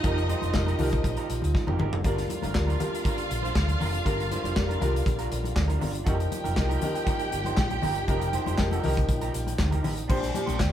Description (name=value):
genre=disco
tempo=119 BPM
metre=4/4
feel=straight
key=unclear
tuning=A4 = 440 Hz
part: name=warm symphonic string section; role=second line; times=0.0-10.7 s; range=Eb4 to G5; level=-34 LUFS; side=right 2 dB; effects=none
part: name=electric guitar through a small old amp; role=accompaniment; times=0.0-10.6 s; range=D4 to C5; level=-36 LUFS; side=right 5 dB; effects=none
part: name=warm grand piano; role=accompaniment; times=0.0-10.7 s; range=Bb2 to C5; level=-33 LUFS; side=left 2 dB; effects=none
part: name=dark French horn section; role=sustained chords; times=0.0-10.7 s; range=C3 to F4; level=-35 LUFS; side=right 2 dB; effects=none
part: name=hollow-body short-scale fingered electric bass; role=bass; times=0.0-10.7 s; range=F1 to D2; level=-29 LUFS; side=equal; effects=none
part: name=modern studio drum kit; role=drums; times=0.0-10.7 s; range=crash cymbal, handclaps, hi-hat, kick drum, snare drum, toms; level=-29 LUFS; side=equal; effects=none
part: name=congas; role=percussion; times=0.3-10.7 s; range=none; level=-35 LUFS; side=left 3 dB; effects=none
room=moderate studio reverb, RT60 0.5 s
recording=band playing live in one room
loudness=-24 LUFS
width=side -11 dB against mid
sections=0.0-10.1 A section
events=drum fill 1.5-2.0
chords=0.0 F9sus4; 2.0 Gm7; 6.1 F9sus4; 10.1 Bb69